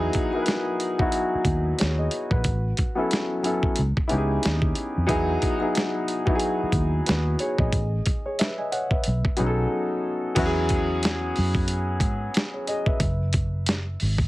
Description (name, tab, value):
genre	R&B, neo-soul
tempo	91 BPM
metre	4/4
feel	swing 58% on 16ths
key	E major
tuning	A4 = 436 Hz
part	warm concert grand piano	accompaniment	0.0-13.2 s	F#3 to G#5	-25 LUFS	left 1 dB	none
part	vintage muted fingered electric bass	bass	0.0-14.3 s	F#1 to G#2	-25 LUFS	equal	none
part	dusty soul sampler-style drum kit	drums	0.1-14.3 s	crash cymbal, hi-hat, kick drum, snare drum	-25 LUFS	equal	none
room	light reverb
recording	heavily compressed radio sound, multiband compression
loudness	-22 LUFS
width	side -18 dB against mid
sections	0.0-10.4 A section; 10.4-14.3 B section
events	break 9.7-10.4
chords	0.0 Emaj9; 2.5 A69; 3.8 C#m9; 5.1 Emaj9; 7.7 Amaj9#11; 9.0 B9; 10.4 E69; 13.0 F#7(no3)